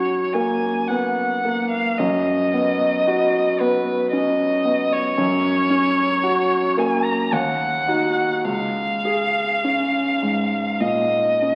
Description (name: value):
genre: classical, romantic duo for violin and grand piano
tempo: 49-58 BPM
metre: 3/4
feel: rubato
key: F# major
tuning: A4 = 440 Hz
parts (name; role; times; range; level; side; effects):
- rich violin; melody; 0.0-11.6 s; B4 to A#5; -23 LUFS; equal; none
- warm grand piano; accompaniment; 0.0-11.6 s; C#2 to G#4; -23 LUFS; equal; none
room: wet concert hall reverb, RT60 1.8 s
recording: very old 78 rpm record, vinyl crackle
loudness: -20 LUFS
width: mono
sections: 0.0-11.6 A section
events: none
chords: 0.0 F#; 2.0 B/F#; 5.2 F#; 7.3 D#m; 8.5 C#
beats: 0.89 | 1.99 3.08 4.14 | 5.19 6.25 7.33 | 8.46 9.65 10.81